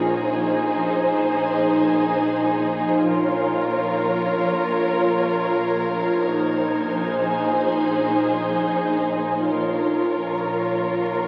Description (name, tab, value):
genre	cinematic, suspense film score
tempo	75 BPM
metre	4/4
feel	straight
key	unclear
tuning	A4 = 440 Hz
part	dark studio violin section	melody	0.0-11.3 s	C5 to Db5	-29 LUFS	equal	none
part	rich studio violin section	second line	0.0-11.3 s	Ab4 to Bb4	-29 LUFS	equal	none
part	warm studio viola section	accompaniment	0.0-11.3 s	Eb4 to F4	-28 LUFS	equal	none
part	evolving wavetable pad	sustained chords	0.0-11.3 s	Eb4 to Bb5	-27 LUFS	equal	ensemble chorus, built-in reverb, phaser
part	rich studio cello section	bass	0.0-11.3 s	Bb2	-38 LUFS	equal	none
part	rich studio double bass section	bass	0.0-11.3 s	Bb1	-36 LUFS	equal	none
part	bowed-like drone	drone	0.0-11.3 s	Bb1	-35 LUFS	equal	built-in reverb
part	rich studio violin section	texture	3.1-9.0 s	Bb5 to Ab6	-39 LUFS	equal	none
room	wet recital hall reverb, RT60 1.4 s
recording	very old 78 rpm record, vinyl crackle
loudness	-22 LUFS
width	mono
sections	0.0-11.3 A section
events	none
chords	0.0 Ab/Bb; 3.1 Bbm; 6.3 Ab/Bb; 9.5 Bbm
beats	0.68 1.48 2.28 | 3.08 3.88 4.68 5.48 | 6.28 7.08 7.88 8.68 | 9.48 10.28 11.08